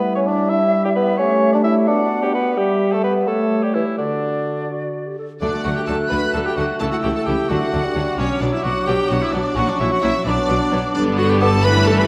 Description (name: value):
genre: quick classical-period movement for symphony orchestra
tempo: 87 BPM (dotted quarters)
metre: 6/8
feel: straight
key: D major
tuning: A4 = 440 Hz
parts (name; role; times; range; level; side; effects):
- bright concert flute; second line; 0.0-11.5 s; C#5 to F#6; -30 LUFS; equal; none
- mellow clarinet; second line; 0.0-12.0 s; C#4 to B4; -28 LUFS; equal; none
- warm cor anglais; second line; 0.0-12.1 s; C#4 to E5; -28 LUFS; equal; none
- mellow bassoon; accompaniment; 0.0-11.5 s; D3 to E4; -24 LUFS; equal; none
- dark French horn section; sustained chords; 0.0-12.1 s; D3 to F#4; -26 LUFS; equal; none
- clear studio violin section; melody; 5.4-12.1 s; C#5 to B5; -30 LUFS; equal; none
- clear studio violin section; second line; 5.4-12.1 s; A3 to E4; -33 LUFS; equal; none
- rich studio viola section; accompaniment; 5.4-12.1 s; D3 to B3; -28 LUFS; equal; none
- rich studio cello section; bass; 5.4-12.1 s; G2 to D3; -28 LUFS; equal; none
- rich studio double bass section; bass; 5.4-12.1 s; G1 to D2; -28 LUFS; equal; none
- timpani; percussion; 5.4-6.1 s; D3; -35 LUFS; equal; none
room: wet scoring stage reverb, RT60 1.7 s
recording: none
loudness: -19 LUFS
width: mono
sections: 0.0-5.4 A section; 5.4-12.1 B section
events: none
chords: 0.0 Em/G; 1.2 A7; 1.9 Bm; 2.6 Em/G; 3.3 A7; 4.0 D; 6.8 A/C#; 7.5 D; 8.2 Bm; 9.6 F#/A#; 10.3 Bm; 11.0 G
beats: 0.50 | 1.19 1.88 | 2.57 3.27 | 3.98 4.70 | 5.41 6.11 | 6.81 7.50 | 8.19 8.88 | 9.58 10.27 | 10.96 11.64